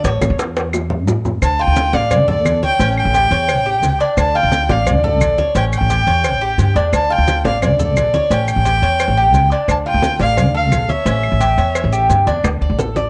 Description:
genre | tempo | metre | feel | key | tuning
latin, Cuban son and guajira | 174 BPM | 4/4 | straight | D harmonic minor | A4 = 442 Hz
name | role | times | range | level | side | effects
Cuban tres | arpeggios | 0.0-13.1 s | C#4 to D5 | -22 LUFS | equal | none
upright bass | bass | 0.0-13.1 s | A1 to A2 | -20 LUFS | equal | none
bongos and cowbell | percussion | 0.0-13.0 s | none | -28 LUFS | equal | none
congas | percussion | 0.0-13.1 s | none | -25 LUFS | equal | none
maracas | percussion | 0.0-13.1 s | none | -36 LUFS | equal | none
claves | percussion | 0.2-12.6 s | none | -30 LUFS | equal | none
warm violin | melody | 1.4-12.1 s | D5 to A5 | -20 LUFS | equal | none
room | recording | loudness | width
light reverb, small room reverb | worn, warbling old tape, cassette tape, warbly pitch drift, nothing above 10.4 kHz | -15 LUFS | mono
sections
0.0-1.4 A section; 1.4-12.4 B section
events
Cuban tres solo 0.0-1.4; drum fill 0.0-1.4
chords
0.0 A; 1.4 Dm; 2.8 A7; 4.2 Dm; 5.6 A7; 6.9 Dm; 8.3 A7; 9.7 Dm; 11.1 A7; 12.4 D5

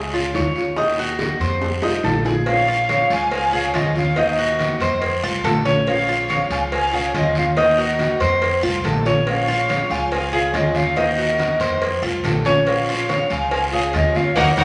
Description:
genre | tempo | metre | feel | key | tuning
latin, Cuban son and guajira | 141 BPM | 4/4 | straight | Bb minor | A4 = 443 Hz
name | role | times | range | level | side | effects
Cuban tres | arpeggios | 0.0-14.6 s | Bb3 to Db5 | -24 LUFS | equal | none
upright bass | bass | 0.0-14.6 s | Bb1 to F2 | -30 LUFS | equal | none
flamenco guitar | accompaniment | 0.1-14.6 s | C3 to Gb4 | -29 LUFS | equal | none
bongos and cowbell | percussion | 0.1-14.6 s | none | -31 LUFS | equal | none
congas | percussion | 0.1-14.6 s | none | -29 LUFS | equal | none
guiro | percussion | 0.3-14.6 s | none | -32 LUFS | equal | none
breathy mellow jazz flute | melody | 2.5-14.6 s | Eb5 to Ab5 | -24 LUFS | equal | none
rich studio violin section | second line | 2.5-14.6 s | Gb4 to F5 | -33 LUFS | equal | none
room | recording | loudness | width
wet large studio reverb, RT60 1.3 s | none | -19 LUFS | mono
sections
0.0-2.5 A section; 2.5-14.6 B section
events
drum fill 1.6-2.5; band accent 14.4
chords
0.0 Db; 0.8 Ebm; 1.6 F7; 2.5 Bbm7; 3.3 Db; 4.2 Ebm; 5.0 F7; 5.9 Bbm7; 6.7 Db; 7.6 Ebm; 8.4 F7; 9.3 Bbm7; 10.1 Db; 11.0 Ebm; 11.8 F7; 12.7 Bbm7; 13.5 Db

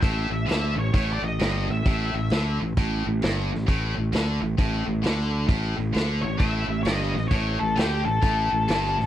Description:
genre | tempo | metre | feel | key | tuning
blues rock power trio and southern rock | 132 BPM | 4/4 | swing 63% on 8ths | A major | A4 = 436 Hz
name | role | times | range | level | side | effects
octave-fuzz lead guitar | melody | 0.0-2.6, 6.2-9.1 s | G4 to E5 | -28 LUFS | left 2 dB | distortion, slapback echo
tight distorted guitar | riff | 0.0-9.1 s | G2 to D3 | -28 LUFS | equal | distortion
fuzz fingered electric bass | bass | 0.0-9.1 s | G1 to D2 | -26 LUFS | equal | overdrive
vintage drum kit | drums | 0.0-9.0 s | hi-hat, kick drum, snare drum | -24 LUFS | equal | none
room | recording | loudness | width
little or no reverb | dry, close 1970s-style studio recording | -22 LUFS | side -12 dB against mid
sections
0.0-9.1 A section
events
none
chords
0.0 A5

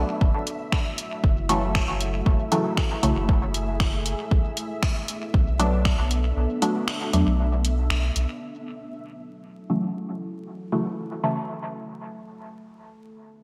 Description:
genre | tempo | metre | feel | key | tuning
dub techno | 117 BPM | 4/4 | straight | F# minor | A4 = 440 Hz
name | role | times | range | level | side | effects
deep dark ambient pad | sustained chords | 0.1-13.4 s | A3 to B4 | -37 LUFS | equal | chorus, built-in reverb, sidechain pumping
filtered dub chord stab | stabs | 0.0-11.4 s | C#3 to D4 | -29 LUFS | equal | chorus, phaser, sidechain pumping, dub echo
soft dub sub bass | bass | 0.0-8.3 s | F#1 to E2 | -27 LUFS | equal | sidechain pumping
flickering grainy texture | texture | 0.0-8.4 s | E5 | -41 LUFS | equal | built-in reverb, analog chorus, sidechain pumping
electronic kick drum | drums | 0.2-6.0 s | none | -24 LUFS | equal | overdrive
punchy analog drum machine | drums | 0.5-8.3 s | finger snaps, hi-hat | -32 LUFS | equal | gated reverb, dub echo
room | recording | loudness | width
moderate lush hall reverb, RT60 2.2 s | bright 1980s-style digital production, vinyl crackle | -24 LUFS | mono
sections
0.0-8.4 A section; 8.4-13.4 B section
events
kick drops out 6.4-8.4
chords
0.2 F#m7; 4.3 Bm7; 8.4 F#m7; 12.5 Bm7

